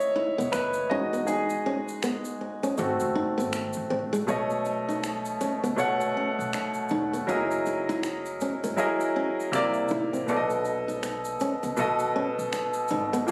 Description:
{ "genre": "R&B, neo-soul", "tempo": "80 BPM", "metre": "4/4", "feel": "swing 60% on 16ths", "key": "unclear", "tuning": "A4 = 439 Hz", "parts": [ { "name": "warm grand piano", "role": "accompaniment", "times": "0.0-13.3 s", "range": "A#2 to F#5", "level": "-29 LUFS", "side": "equal", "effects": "none" }, { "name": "egg shaker and finger snaps", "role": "percussion", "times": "0.0-13.3 s", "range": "none", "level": "-41 LUFS", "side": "equal", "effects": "none" }, { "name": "flamenco guitar", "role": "second line", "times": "0.2-13.3 s", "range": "G#3 to F#4", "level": "-32 LUFS", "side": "equal", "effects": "none" }, { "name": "upright bass", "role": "bass", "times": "0.2-13.3 s", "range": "E1 to C#2", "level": "-42 LUFS", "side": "equal", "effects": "none" } ], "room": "light reverb", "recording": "recorded on a phone in the room, studio reverb", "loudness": "-28 LUFS", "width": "mono", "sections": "0.0-4.3 A section; 4.3-13.3 B section", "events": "grand piano solo 0.0-4.3", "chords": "0.0 B9sus4; 0.9 Emaj9; 2.8 G#7b9; 4.3 B9; 7.3 F#13; 9.5 C9; 10.3 B7", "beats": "0.53 | 1.28 2.03 2.78 3.53 | 4.28 5.03 5.78 6.53 | 7.28 8.03 8.78 9.53 | 10.28 11.03 11.78 12.53 | 13.28" }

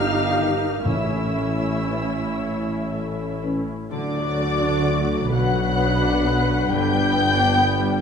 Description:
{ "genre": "classical, slow romantic movement for symphony orchestra", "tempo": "38-45 BPM (dotted quarters)", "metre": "6/8", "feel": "rubato", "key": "unclear", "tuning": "A4 = 441 Hz", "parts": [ { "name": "muted studio violin section", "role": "melody", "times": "0.0-8.0 s", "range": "D6 to G6", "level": "-29 LUFS", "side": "left 3 dB", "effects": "none" }, { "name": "muted studio violin section", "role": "second line", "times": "0.0-8.0 s", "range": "D5 to G5", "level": "-26 LUFS", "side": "left 2 dB", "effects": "none" }, { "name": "muted studio viola section", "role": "accompaniment", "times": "0.0-8.0 s", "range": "D3 to B4", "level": "-27 LUFS", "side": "equal", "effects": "none" }, { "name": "concert harp", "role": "arpeggios", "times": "0.0-8.0 s", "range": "G2 to C#5", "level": "-30 LUFS", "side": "left 7 dB", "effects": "none" }, { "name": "mellow tuba", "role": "bass", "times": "0.0-8.0 s", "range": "G1 to D2", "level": "-28 LUFS", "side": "right 3 dB", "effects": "none" }, { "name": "muted studio cello section", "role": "bass", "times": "0.0-8.0 s", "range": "G2 to D3", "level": "-28 LUFS", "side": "right 2 dB", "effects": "none" }, { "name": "muted studio double bass section", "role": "bass", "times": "0.0-8.0 s", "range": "G1 to D2", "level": "-31 LUFS", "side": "right 3 dB", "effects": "none" }, { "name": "mellow French horn section", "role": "sustained chords", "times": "0.4-8.0 s", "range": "Eb3 to Eb4", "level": "-27 LUFS", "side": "left 2 dB", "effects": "none" }, { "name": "timpani", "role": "percussion", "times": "0.9-2.4 s", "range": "A2", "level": "-28 LUFS", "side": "left 2 dB", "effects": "none" } ], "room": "wet recital hall reverb, RT60 1.6 s", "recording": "minimal, uncompressed stereo recording", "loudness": "-19 LUFS", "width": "side -7 dB against mid", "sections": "0.0-8.0 A section", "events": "none", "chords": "0.0 Eb/G; 0.9 A; 3.9 D; 5.3 Bm; 6.7 G", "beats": "| 0.85 2.40 | 3.92 5.32 | 6.70" }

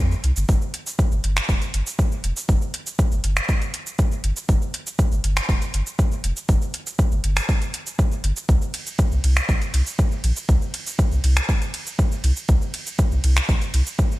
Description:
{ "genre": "dub techno", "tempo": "120 BPM", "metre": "4/4", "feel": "straight", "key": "G minor", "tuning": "A4 = 436 Hz", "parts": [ { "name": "soft dub sub bass", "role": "bass", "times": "0.0-13.8 s", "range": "F1 to F2", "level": "-20 LUFS", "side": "equal", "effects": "sidechain pumping" }, { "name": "deep house drum kit", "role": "drums", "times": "0.1-14.2 s", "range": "cabasa, finger snaps, hi-hat, ride cymbal", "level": "-27 LUFS", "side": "right 1 dB", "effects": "overdrive, gated reverb" }, { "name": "electronic kick drum", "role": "drums", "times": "0.5-14.1 s", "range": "none", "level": "-19 LUFS", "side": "equal", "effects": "overdrive" } ], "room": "little or no reverb", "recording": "bright 1980s-style digital production", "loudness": "-19 LUFS", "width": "side -18 dB against mid", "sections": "0.0-14.2 A section", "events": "none", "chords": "none", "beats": "| 0.49 0.99 1.49 1.99 | 2.49 2.99 3.49 3.99 | 4.49 4.99 5.49 5.99 | 6.49 6.99 7.49 7.99 | 8.49 8.99 9.49 9.99 | 10.49 10.99 11.49 11.99 | 12.49 12.99 13.49 13.99" }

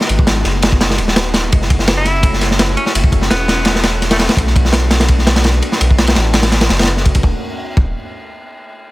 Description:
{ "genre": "drum and bass, jungle", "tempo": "168 BPM", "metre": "4/4", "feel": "straight", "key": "unclear", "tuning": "A4 = 439 Hz", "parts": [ { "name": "lush unison pad", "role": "sustained chords", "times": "0.0-7.4 s", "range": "Ab3 to F#4", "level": "-24 LUFS", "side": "equal", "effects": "chorus" }, { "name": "crunchy breakbeat drum kit", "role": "drums", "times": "0.0-7.8 s", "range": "kick drum, ride cymbal, snare drum", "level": "-13 LUFS", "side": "equal", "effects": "none" }, { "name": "soft dub sub bass", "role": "bass", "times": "0.1-7.9 s", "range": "Eb1 to B1", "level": "-16 LUFS", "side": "equal", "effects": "none" }, { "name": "bright tenor saxophone", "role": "melody", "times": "2.0-4.3 s", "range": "A3 to Fb4", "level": "-21 LUFS", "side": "equal", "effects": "vintage 12-bit sampler grit, dub echo" } ], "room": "small room ambience", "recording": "none", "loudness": "-11 LUFS", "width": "side -19 dB against mid", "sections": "0.0-7.2 A section; 7.2-8.7 B section", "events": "drop 0.0-7.2", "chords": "0.0 Abm7; 1.5 Gbm7; 4.4 Bm7; 7.2 Ebm7", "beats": "| 0.09 0.45 0.81 1.16 | 1.52 1.88 2.23 2.59 | 2.95 3.31 3.66 4.02 | 4.38 4.73 5.09 5.45 | 5.80 6.16 6.52 6.88 | 7.23 7.59" }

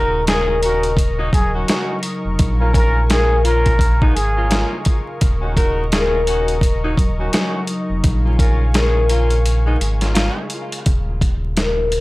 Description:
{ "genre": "hip hop, boom-bap hip-hop", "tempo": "85 BPM", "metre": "4/4", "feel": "swing 60% on 16ths", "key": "Eb minor", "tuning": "A4 = 439 Hz", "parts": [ { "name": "trumpet with plunger mute", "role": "melody", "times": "0.0-4.7 s", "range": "Ab4 to Bb4", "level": "-22 LUFS", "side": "equal", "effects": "high-pass filter, low-pass filter, analog delay" }, { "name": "concert harp", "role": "accompaniment", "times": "0.0-12.0 s", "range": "Db3 to Bb4", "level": "-23 LUFS", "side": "left 2 dB", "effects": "cassette tape, high-pass filter, low-pass filter" }, { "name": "warm analog pad", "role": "sustained chords", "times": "0.0-10.8 s", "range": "Bb4 to Db6", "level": "-30 LUFS", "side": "equal", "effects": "chorus, high-pass filter, low-pass filter" }, { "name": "clear saxophone section", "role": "stabs", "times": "0.0-10.4 s", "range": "Gb3 to Bb4", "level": "-25 LUFS", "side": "equal", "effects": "high-pass filter, low-pass filter, analog delay" }, { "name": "sub bass with octave", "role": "bass", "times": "0.0-12.0 s", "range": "Eb1 to Bb1", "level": "-19 LUFS", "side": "equal", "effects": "none" }, { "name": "dusty soul sampler-style drum kit", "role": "drums", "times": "0.3-12.0 s", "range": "hi-hat, kick drum, snare drum", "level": "-18 LUFS", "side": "equal", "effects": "none" } ], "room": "small room ambience", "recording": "dry, gritty hardware recording, vinyl crackle", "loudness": "-15 LUFS", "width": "side -20 dB against mid", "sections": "0.0-10.9 A section; 10.9-12.0 B section", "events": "break 9.4-10.9", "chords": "0.0 Ebm7; 2.4 Bbm7; 5.2 Ebm7; 8.0 Bbm7; 10.9 Eb7(no3)", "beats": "0.27 0.98 1.69 | 2.39 3.10 3.80 4.51 | 5.21 5.92 6.63 7.33 | 8.04 8.74 9.45 10.15 | 10.86 11.57" }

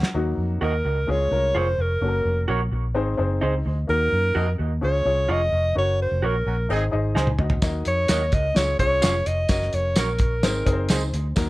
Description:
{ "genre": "uptempo 1960s-style soul", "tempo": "128 BPM", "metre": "4/4", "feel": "straight", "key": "Eb dorian", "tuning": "A4 = 441 Hz", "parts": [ { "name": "dark upright piano", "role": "accompaniment", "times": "0.0-11.5 s", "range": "Gb3 to Ab5", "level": "-28 LUFS", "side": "left 3 dB", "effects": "none" }, { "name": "cloth-damped thuddy drum kit", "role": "drums", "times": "0.0-0.1, 7.2-11.5 s", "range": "hi-hat, kick drum, snare drum, toms", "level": "-23 LUFS", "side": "equal", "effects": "none" }, { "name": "vintage muted fingered electric bass", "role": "bass", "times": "0.1-11.5 s", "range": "F1 to Gb2", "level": "-24 LUFS", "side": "equal", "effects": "none" }, { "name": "warm alto saxophone", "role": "melody", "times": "0.6-11.1 s", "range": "Bb4 to Eb5", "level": "-24 LUFS", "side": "equal", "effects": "none" }, { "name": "electric guitar through a small old amp", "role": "stabs", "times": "0.6-11.0 s", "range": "Eb4 to Eb5", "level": "-29 LUFS", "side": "right 4 dB", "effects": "analog delay" }, { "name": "warm horn section", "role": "second line", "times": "6.5-6.9 s", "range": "C4 to Bb4", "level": "-28 LUFS", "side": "right 1 dB", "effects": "none" }, { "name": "tambourine", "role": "percussion", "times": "7.6-11.5 s", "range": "none", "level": "-34 LUFS", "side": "right 4 dB", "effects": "none" } ], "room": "light reverb", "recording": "none", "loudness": "-20 LUFS", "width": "side -19 dB against mid", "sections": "0.1-11.5 A section", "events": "upright piano fill 3.2-3.9; band accent 5.8-7.6; drum fill 7.2-7.6", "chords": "0.1 Ebm; 1.1 Db; 2.0 Gb; 2.9 Ab; 3.9 Ebm; 4.8 Db; 5.8 Gb; 6.7 Ab; 7.6 Ebm; 8.6 Db; 9.5 Gb; 10.4 Ab", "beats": "| 0.14 0.61 1.07 1.54 | 2.01 2.48 2.95 3.42 | 3.88 4.35 4.82 5.29 | 5.75 6.22 6.69 7.16 | 7.63 8.10 8.56 9.03 | 9.50 9.97 10.44 10.90 | 11.37" }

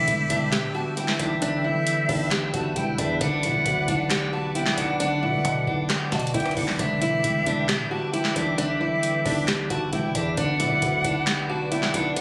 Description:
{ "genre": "hip hop, trap", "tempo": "134 BPM", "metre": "4/4", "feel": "half-time", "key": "E minor", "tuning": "A4 = 440 Hz", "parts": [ { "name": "picked steel-string acoustic guitar", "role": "melody", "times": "0.0-12.2 s", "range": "D4 to G4", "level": "-30 LUFS", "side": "equal", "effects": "delay" }, { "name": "jazz flute", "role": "second line", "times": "0.0-12.2 s", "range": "E5 to A5", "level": "-30 LUFS", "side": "equal", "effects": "delay" }, { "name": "concert harp", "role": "accompaniment", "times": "0.0-12.2 s", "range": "D3 to D5", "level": "-32 LUFS", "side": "equal", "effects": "none" }, { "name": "warm analog pad", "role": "sustained chords", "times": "0.0-12.2 s", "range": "B4 to E6", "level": "-37 LUFS", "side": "equal", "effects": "chorus" }, { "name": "growling 808-style bass", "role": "bass", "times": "0.0-12.2 s", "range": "D1 to B2", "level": "-35 LUFS", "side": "equal", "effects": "none" }, { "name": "booming analog drum machine", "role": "drums", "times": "0.1-12.2 s", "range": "handclaps, hi-hat, kick drum, rim click, snare drum", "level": "-31 LUFS", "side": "equal", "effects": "none" } ], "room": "little or no reverb", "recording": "recorded on a phone in the room, club reverb", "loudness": "-24 LUFS", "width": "mono", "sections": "0.0-12.2 A section", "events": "none", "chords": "0.0 Em7; 3.2 Bm; 6.8 Em7; 10.4 Bm", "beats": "0.07 0.52 0.97 | 1.42 1.87 2.31 2.76 | 3.21 3.66 4.11 4.55 | 5.00 5.45 5.90 6.34 | 6.79 7.24 7.69 8.13 | 8.58 9.03 9.48 9.93 | 10.37 10.82 11.27 11.72 | 12.16" }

